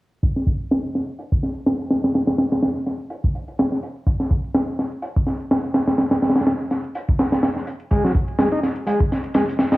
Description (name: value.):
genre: breakbeat, breaks.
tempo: 125 BPM.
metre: 4/4.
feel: swing 55% on 16ths.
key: unclear.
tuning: A4 = 436 Hz.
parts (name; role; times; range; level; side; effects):
crunchy breakbeat drum kit; drums; 0.2-9.8 s; hi-hat, kick drum, snare drum; -19 LUFS; equal; none.
electronic hi-hat; drums; 0.2-9.8 s; none; -59 LUFS; right 2 dB; none.
combo organ; riff; 7.9-9.8 s; F#3 to D#4; -22 LUFS; equal; overdrive, tape echo.
room: moderate digital room reverb, RT60 0.9 s, studio reverb.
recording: dry, gritty hardware recording, transformer saturation, low-pass filter, small room reverb.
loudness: -19 LUFS.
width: side -19 dB against mid.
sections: 0.2-9.8 A section.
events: filter sweep 0.2-9.8.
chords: none.